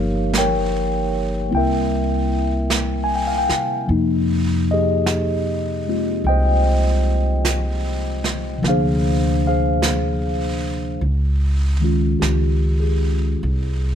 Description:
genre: jazz ballad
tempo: 50 BPM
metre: 4/4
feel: swing 68% on 8ths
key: unclear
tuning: A4 = 441 Hz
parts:
  - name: mellow tine electric piano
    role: accompaniment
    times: 0.0-13.9 s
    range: C3 to Ab5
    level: -20 LUFS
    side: left 1 dB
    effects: wide subtle chorus
  - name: upright bass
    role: bass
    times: 0.0-13.9 s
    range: G1 to C3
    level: -21 LUFS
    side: equal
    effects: none
  - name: jazz brush drum kit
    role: drums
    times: 0.3-13.9 s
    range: brushed snare drum, hi-hat, snare drum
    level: -28 LUFS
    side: right 4 dB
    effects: none
room: little or no reverb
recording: close, detailed microphones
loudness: -17 LUFS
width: side -9 dB against mid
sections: 0.0-13.9 A section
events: none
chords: 0.0 Gm7b5; 1.5 C7; 3.9 Fm9; 8.6 Dm7b5; 11.0 Db; 13.4 N.C.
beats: 0.32 1.51 2.69 | 3.88 5.06 6.25 7.44 | 8.63 9.82 11.01 12.21 | 13.41

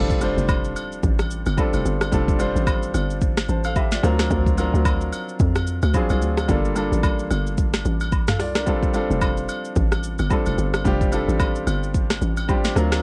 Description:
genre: amapiano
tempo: 110 BPM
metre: 4/4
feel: swing 58% on 16ths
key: F major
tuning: A4 = 440 Hz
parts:
  - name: warm baby grand piano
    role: accompaniment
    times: 0.0-13.0 s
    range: F#3 to A5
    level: -27 LUFS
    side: equal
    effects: cassette tape
  - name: hollow log drum bass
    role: bass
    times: 0.0-13.0 s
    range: F1 to E#2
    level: -26 LUFS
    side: equal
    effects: none
  - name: impact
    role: sound effects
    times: 0.0-2.1 s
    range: none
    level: -39 LUFS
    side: equal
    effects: none
  - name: afro-pop drum kit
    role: drums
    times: 0.1-13.0 s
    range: hi-hat, kick drum, rim click, shaker, snare drum, toms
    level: -25 LUFS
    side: equal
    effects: vintage 12-bit sampler grit, cassette tape
  - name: agogo bells and woodblock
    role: percussion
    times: 0.2-13.0 s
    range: none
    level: -34 LUFS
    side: equal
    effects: none
room: little or no reverb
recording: home recording on cassette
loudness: -21 LUFS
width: mono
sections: 0.0-13.0 A section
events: impact 0.0-2.1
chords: 0.0 F69; 4.0 D7alt; 6.5 Gm9; 8.7 F69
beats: 0.49 1.03 1.58 | 2.12 2.67 3.21 3.76 | 4.31 4.85 5.40 5.94 | 6.49 7.03 7.58 8.12 | 8.67 9.21 9.76 10.31 | 10.85 11.40 11.94 12.49

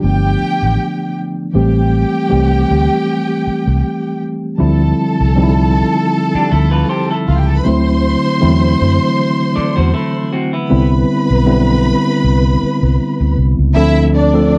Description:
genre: soul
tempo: 79 BPM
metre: 4/4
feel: swing 54% on 16ths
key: D dorian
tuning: A4 = 441 Hz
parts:
  - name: warm studio string section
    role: second line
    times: 0.0-14.6 s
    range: D4 to C6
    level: -23 LUFS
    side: equal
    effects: none
  - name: mellow tine electric piano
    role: accompaniment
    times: 0.0-14.6 s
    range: D3 to A4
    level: -17 LUFS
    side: equal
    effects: none
  - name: vintage muted fingered electric bass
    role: bass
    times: 0.0-14.6 s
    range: G1 to F#2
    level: -16 LUFS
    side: equal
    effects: none
  - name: electric guitar through a small old amp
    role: riff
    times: 6.3-10.9 s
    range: B3 to D5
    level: -24 LUFS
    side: equal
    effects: none
room: little or no reverb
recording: dry, close 1970s-style studio recording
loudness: -14 LUFS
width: mono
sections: 0.0-1.6 A section; 1.6-13.8 B section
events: tine electric piano solo 0.0-1.6; break 0.8-1.6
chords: 0.0 G7; 1.6 Am7; 4.6 Dm11; 7.7 D9; 10.7 Cmaj9; 13.8 Dm7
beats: 0.03 0.79 | 1.55 2.32 3.08 3.84 | 4.60 5.37 6.13 6.89 | 7.65 8.42 9.18 9.94 | 10.70 11.47 12.23 12.99 | 13.76 14.52

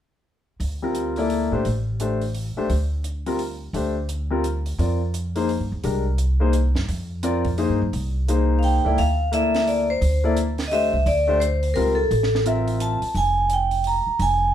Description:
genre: modal jazz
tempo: 172 BPM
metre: 3/4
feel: swing 62% on 8ths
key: unclear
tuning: A4 = 438 Hz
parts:
  - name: upright bass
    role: bass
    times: 0.6-14.5 s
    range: F1 to A2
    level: -23 LUFS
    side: equal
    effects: none
  - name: compact cocktail drum kit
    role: drums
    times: 0.6-14.3 s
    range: hi-hat, kick drum, snare drum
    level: -35 LUFS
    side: right 4 dB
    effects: none
  - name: warm concert grand piano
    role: accompaniment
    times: 0.8-13.0 s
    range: G3 to E5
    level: -24 LUFS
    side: left 3 dB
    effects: none
  - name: vibraphone with medium hard mallets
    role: melody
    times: 8.6-14.5 s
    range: A4 to Bb5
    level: -21 LUFS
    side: right 1 dB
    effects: none
room: moderate studio reverb, RT60 0.7 s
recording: heard from further back in the room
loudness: -20 LUFS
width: side -10 dB against mid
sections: 0.6-9.0 A section; 9.0-14.5 B section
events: none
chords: 0.6 Dm7; 4.8 Fm7; 9.0 Dm9; 13.2 Fmadd9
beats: | 0.61 0.96 1.31 | 1.66 2.01 2.35 | 2.70 3.05 3.40 | 3.75 4.10 4.45 | 4.80 5.15 5.50 | 5.84 6.19 6.54 | 6.89 7.24 7.59 | 7.94 8.29 8.63 | 8.98 9.33 9.68 | 10.03 10.37 10.72 | 11.07 11.42 11.77 | 12.12 12.46 12.81 | 13.16 13.51 13.86 | 14.20

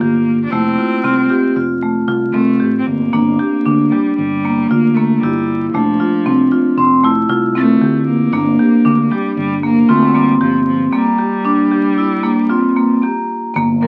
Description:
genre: contemporary instrumental, chamber music in an uneven meter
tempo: 115 BPM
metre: 5/4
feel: straight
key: G dorian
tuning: A4 = 440 Hz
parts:
  - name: clear cello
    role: melody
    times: 0.0-13.9 s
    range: F3 to D4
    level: -20 LUFS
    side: equal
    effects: none
  - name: vibraphone with medium mallets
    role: second line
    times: 0.0-13.9 s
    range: Bb3 to G4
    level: -19 LUFS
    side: equal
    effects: none
  - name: marimba with medium hard mallets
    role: arpeggios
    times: 0.0-13.9 s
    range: A3 to Bb4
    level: -18 LUFS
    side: equal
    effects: none
  - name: fretless electric bass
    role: bass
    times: 0.0-13.9 s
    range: F1 to D2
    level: -25 LUFS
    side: equal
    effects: none
room: moderate booth ambience, RT60 0.2 s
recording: very old 78 rpm record, vinyl crackle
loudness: -14 LUFS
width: mono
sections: 0.0-13.6 A section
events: break 10.9-13.6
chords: 0.0 Gm7; 0.5 Fmaj7; 3.1 Gm; 5.7 Fmaj7; 8.3 Gm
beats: 0.00 | 0.52 1.04 1.56 2.08 2.61 | 3.13 3.66 4.18 4.71 5.23 | 5.74 6.26 6.78 7.29 7.81 | 8.33 8.84 9.36 9.88 10.40 | 10.92 11.44 11.97 12.49 13.03 | 13.56

